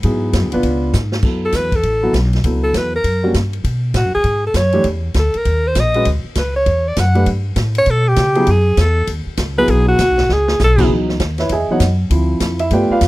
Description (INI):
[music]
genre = jazz, big band swing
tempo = 199 BPM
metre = 4/4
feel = swing 63% on 8ths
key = F# minor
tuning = A4 = 438 Hz
[part]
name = warm grand piano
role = accompaniment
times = 0.0-13.0 s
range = C#3 to G#5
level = -18 LUFS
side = equal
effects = none
[part]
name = upright bass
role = bass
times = 0.0-13.1 s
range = G#1 to C#3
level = -17 LUFS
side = equal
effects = none
[part]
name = swinging big-band drum kit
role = drums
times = 0.0-13.1 s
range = crash cymbal, hi-hat, kick drum, ride cymbal, snare drum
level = -23 LUFS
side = equal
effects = none
[part]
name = clear alto saxophone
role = melody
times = 1.5-10.9 s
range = F#4 to F#5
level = -16 LUFS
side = equal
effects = none
[sound]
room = small room reverb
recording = dry, close 1970s-style studio recording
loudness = -13 LUFS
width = side -18 dB against mid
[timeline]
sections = 0.0-1.2 A section; 1.2-10.9 A section; 10.9-13.1 A section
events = alto saxophone solo 0.0-10.9; drum fill 0.9-1.2, 10.3-10.6; grand piano solo 10.9-13.1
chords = 0.0 G#m7b5; 0.6 C#7b9; 1.2 F#m7; 2.4 A69/C#; 3.0 F#; 3.7 Bm7; 4.9 A#maj7#11 (rootless); 5.5 D#5; 6.1 Dmaj9; 7.3 G; 8.5 F#m7; 9.1 C#m11; 9.7 G#m7b5; 10.3 C#5; 10.9 C#m11; 12.1 Dm7